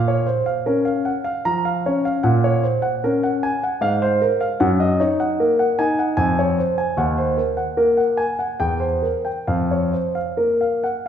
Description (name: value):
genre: classical, baroque-style suite movement for grand piano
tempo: 75 BPM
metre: 3/4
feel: uneven beats, rubato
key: Bb minor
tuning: A4 = 440 Hz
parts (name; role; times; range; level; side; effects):
- warm concert grand piano; solo; 0.0-11.1 s; Eb2 to Bb5; -17 LUFS; equal; none
room: wet recital hall reverb, RT60 1.5 s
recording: recorded in a church or concert hall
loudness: -17 LUFS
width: side -9 dB against mid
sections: 0.0-11.1 A section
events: none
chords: 0.0 Bbm; 2.3 Gb/Bb; 3.8 Fm/Ab; 4.6 Ebm/Gb; 6.2 Db/F; 7.0 Cm7b5/Eb; 8.6 C7/E; 9.5 Bbm/F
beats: 0.66 1.46 | 2.25 3.04 3.83 | 4.62 5.40 6.20 | 7.00 7.80 8.63 | 9.50 10.39